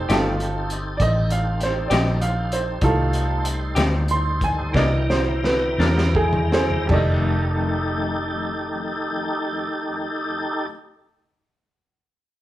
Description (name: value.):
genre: slow blues.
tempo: 52-66 BPM (dotted quarters).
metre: 12/8.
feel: straight.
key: F mixolydian.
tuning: A4 = 441 Hz.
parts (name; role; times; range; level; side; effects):
clear upright piano; accompaniment; 0.0-10.7 s; E3 to C6; -24 LUFS; right 2 dB; none.
tonewheel organ; sustained chords; 0.0-10.7 s; D3 to Bb5; -27 LUFS; equal; overdrive, chorus vibrato, slow rotary speaker.
vintage muted fingered electric bass; bass; 0.0-10.7 s; F1 to E2; -23 LUFS; equal; none.
clean electric guitar; accompaniment; 0.1-10.8 s; F2 to G4; -28 LUFS; left 3 dB; tremolo.
crunchy breakbeat drum kit; drums; 0.1-7.1 s; crash cymbal, hi-hat, kick drum, snare drum, toms; -25 LUFS; equal; none.
room: moderate large studio reverb, RT60 0.9 s.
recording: band playing live in one room.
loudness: -19 LUFS.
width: side -14 dB against mid.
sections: 0.0-6.9 A section; 6.9-11.6 B section.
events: upright piano solo 0.0-6.9; slowing down 1.6-6.9; drum fill 4.7-6.9.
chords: 0.0 F9; 4.7 C9; 6.9 F13.